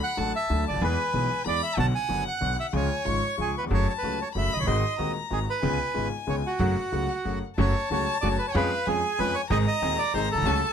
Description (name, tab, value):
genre	tango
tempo	187 BPM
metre	3/4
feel	rubato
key	F# minor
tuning	A4 = 442 Hz
part	bandoneon	melody	0.0-10.7 s	F#4 to A5	-28 LUFS	right 4 dB	none
part	warm violin	second line	0.0-10.7 s	E#5 to C#6	-32 LUFS	left 9 dB	none
part	bright grand piano	accompaniment	0.2-10.6 s	D#1 to A4	-30 LUFS	left 2 dB	none
part	upright bass	bass	0.2-10.6 s	E#1 to E#2	-29 LUFS	right 1 dB	none
part	muted studio string section	stabs	7.6-10.6 s	G#3 to A4	-35 LUFS	equal	none
room	light reverb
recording	close, detailed microphones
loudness	-24 LUFS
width	side -8 dB against mid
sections	0.0-7.6 A section; 7.6-10.7 B section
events	none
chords	0.0 D; 0.8 E; 1.8 Bm; 2.7 C#; 3.7 F#m; 4.7 G#7; 5.6 C#7; 6.6 F#m; 8.5 C#/E#; 9.5 G#